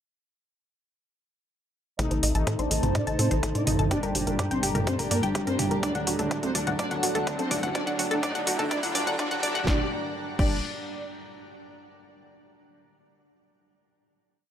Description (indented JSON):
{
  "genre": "melodic techno",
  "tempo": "125 BPM",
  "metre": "4/4",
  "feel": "straight",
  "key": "G harmonic minor",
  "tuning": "A4 = 441 Hz",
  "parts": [
    { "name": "expressive synth lead", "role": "melody", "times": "2.0-10.6 s", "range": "D3 to Eb4", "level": "-34 LUFS", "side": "right 1 dB", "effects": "analog chorus, analog delay" },
    { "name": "warm studio violin section", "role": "second line", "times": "2.0-10.6 s", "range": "D4 to Eb5", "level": "-36 LUFS", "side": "equal", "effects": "sidechain pumping, low-pass filter, analog delay" },
    { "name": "evolving wavetable pad", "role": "sustained chords", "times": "2.4-9.9 s", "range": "D4 to Bb5", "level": "-34 LUFS", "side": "equal", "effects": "phaser, built-in reverb, sidechain pumping" },
    { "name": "analog pluck", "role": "arpeggios", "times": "2.0-10.6 s", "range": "F#4 to A5", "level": "-32 LUFS", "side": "left 1 dB", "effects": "chorus, sidechain pumping, analog delay" },
    { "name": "analog synth brass", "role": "stabs", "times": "2.0-10.6 s", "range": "A2 to Eb4", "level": "-33 LUFS", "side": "equal", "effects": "chorus, sidechain pumping, analog delay" },
    { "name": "tight sequencer bass", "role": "bass", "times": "2.0-10.6 s", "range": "D1 to A2", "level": "-31 LUFS", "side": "equal", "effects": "sidechain pumping" },
    { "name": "analog drone", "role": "drone", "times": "3.5-9.7 s", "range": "G2 to A3", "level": "-42 LUFS", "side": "equal", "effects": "none" },
    { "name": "deep house drum kit", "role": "drums", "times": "2.0-10.5 s", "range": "crash cymbal, hi-hat, snare drum, toms", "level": "-31 LUFS", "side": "equal", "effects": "overdrive" },
    { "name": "electronic kick drum", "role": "drums", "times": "2.0-10.5 s", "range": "none", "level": "-30 LUFS", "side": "equal", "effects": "overdrive, high-pass filter on kick, high-pass filter on room" },
    { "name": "riser", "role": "sound effects", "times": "5.6-9.7 s", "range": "none", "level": "-38 LUFS", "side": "right 1 dB", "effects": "none" }
  ],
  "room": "light reverb",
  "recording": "dry, gritty hardware recording, high-pass filter",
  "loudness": "-24 LUFS",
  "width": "side -9 dB against mid",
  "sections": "2.0-9.7 build; 9.7-11.6 final chord",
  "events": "build-up 2.0-9.7; filter sweep on synth arpeggio sound 2.0-9.7; filter sweep on analog synth lead 2.0-9.7; filter sweep on violin section 2.0-9.7; filter sweep on ambient pad 2.0-9.7; filter sweep 2.0-9.7; riser 5.6-9.7",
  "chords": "2.0 Adim; 3.9 Gm; 5.8 D; 7.8 Gm"
}